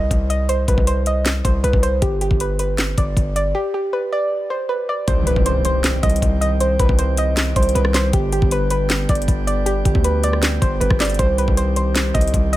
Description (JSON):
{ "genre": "hip hop, trap", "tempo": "157 BPM", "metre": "4/4", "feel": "half-time", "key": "C harmonic minor", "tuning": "A4 = 440 Hz", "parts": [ { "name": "soft round pluck", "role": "melody", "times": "0.0-12.6 s", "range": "G4 to Eb5", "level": "-21 LUFS", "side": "right 1 dB", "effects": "chorus, tape echo" }, { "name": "hard-hitting 808-style bass", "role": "bass", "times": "0.0-12.6 s", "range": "G1 to D2", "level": "-20 LUFS", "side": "equal", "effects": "none" }, { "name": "trap drum kit", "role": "drums", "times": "0.1-12.6 s", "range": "handclaps, hi-hat, kick drum, rim click, snare drum", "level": "-19 LUFS", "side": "equal", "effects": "none" }, { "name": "chamber organ, sparkling flutes", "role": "sustained chords", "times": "5.1-12.6 s", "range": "D3 to G4", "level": "-27 LUFS", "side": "right 1 dB", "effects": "stereo widening" }, { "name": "impact", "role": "sound effects", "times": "5.1-6.6 s", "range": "none", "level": "-28 LUFS", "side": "equal", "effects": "none" } ], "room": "digital ambience", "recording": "none", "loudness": "-16 LUFS", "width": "side -15 dB against mid", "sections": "0.0-5.1 A section; 5.1-12.6 B section", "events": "break 3.5-5.1; impact 5.1-6.6", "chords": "0.0 Cm; 2.0 G; 5.1 Cm; 8.1 G; 11.2 Cm" }